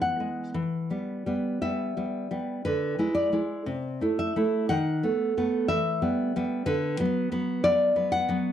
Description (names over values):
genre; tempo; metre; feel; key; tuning
romantic piece for solo classical guitar; 59 BPM; 2/4; uneven beats, rubato; E minor; A4 = 440 Hz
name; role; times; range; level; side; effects
nylon-string guitar; solo; 0.0-8.5 s; C3 to F#5; -25 LUFS; equal; slapback echo
room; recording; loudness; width
light reverb; dry, close 1970s-style studio recording; -25 LUFS; side -10 dB against mid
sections
0.6-8.5 A section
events
none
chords
0.0 E; 0.6 Em; 2.6 E7/D; 3.7 Am/C; 4.7 B7/D#; 5.7 Em; 6.7 Bm/D